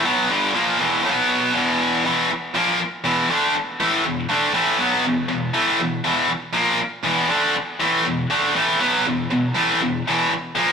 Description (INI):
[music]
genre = rock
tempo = 120 BPM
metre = 4/4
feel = straight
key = E minor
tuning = A4 = 440 Hz
[part]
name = tight distorted guitar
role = solo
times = 0.0-10.7 s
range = E2 to D4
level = -17 LUFS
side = equal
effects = distortion, tape echo
[sound]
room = moderate stone room reverb, RT60 1.2 s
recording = rough rehearsal-room recording, warm saturation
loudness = -17 LUFS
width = side -6 dB against mid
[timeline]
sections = 0.0-2.0 A section; 2.0-10.7 B section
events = none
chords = 0.0 Em; 1.0 B5; 1.5 E5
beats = | 0.05 0.55 1.05 1.55 | 2.04 2.54 3.04 3.54 | 4.04 4.54 5.04 5.54 | 6.04 6.55 7.05 7.55 | 8.05 8.55 9.05 9.55 | 10.05 10.55